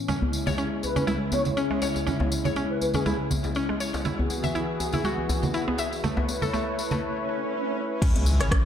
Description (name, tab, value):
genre	afro house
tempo	121 BPM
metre	4/4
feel	swing 55% on 16ths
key	C# minor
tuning	A4 = 440 Hz
part	warm analog pad	sustained chords	0.0-8.7 s	C#3 to C#5	-30 LUFS	left 1 dB	chorus, tremolo, sidechain pumping
part	mallet-like synth pluck	arpeggios	0.1-8.6 s	G#3 to E5	-30 LUFS	left 1 dB	chorus, sidechain pumping, tape echo
part	congas	percussion	0.1-7.0 s	none	-31 LUFS	right 2 dB	none
part	tambourine	percussion	0.1-8.6 s	none	-37 LUFS	left 3 dB	none
part	djembe	percussion	0.2-8.4 s	none	-31 LUFS	left 1 dB	none
part	expressive synth lead	melody	0.8-3.1 s	G#4 to C#5	-31 LUFS	left 1 dB	ensemble chorus, tape echo
part	swell and impact	sound effects	7.2-8.7 s	none	-32 LUFS	right 1 dB	none
part	round analog bass	bass	8.0-8.7 s	G#1 to C#2	-24 LUFS	equal	sidechain pumping
part	afro-pop drum kit	drums	8.0-8.6 s	crash cymbal, hi-hat, rim click	-30 LUFS	equal	studio reverb
part	electronic kick drum	drums	8.0-8.6 s	none	-22 LUFS	equal	studio reverb
room	moderate lush hall reverb, RT60 1.6 s, digital ambience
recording	dark, warm production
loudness	-24 LUFS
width	side -9 dB against mid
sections	0.0-8.0 A section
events	filter sweep on analog synth pad 0.0-8.0; break 7.0-8.0; swell 7.2-8.0; impact 8.0-8.7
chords	0.1 C#m; 4.1 E; 6.0 A; 8.0 C#m